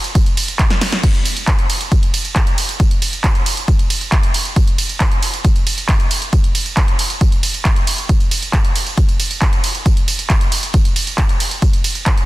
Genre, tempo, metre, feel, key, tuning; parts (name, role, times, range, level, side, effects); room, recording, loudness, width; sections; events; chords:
trance; 136 BPM; 4/4; straight
punchy analog drum machine; drums; 0.0-12.3 s; crash cymbal, handclaps, hi-hat, ride cymbal, snare drum, tambourine; -19 LUFS; right 2 dB
electronic kick drum; drums; 0.2-12.2 s; -15 LUFS; equal
little or no reverb; dense, heavily limited modern master; -13 LUFS; side -18 dB against mid
0.0-12.3 A section
drum fill 0.7-1.0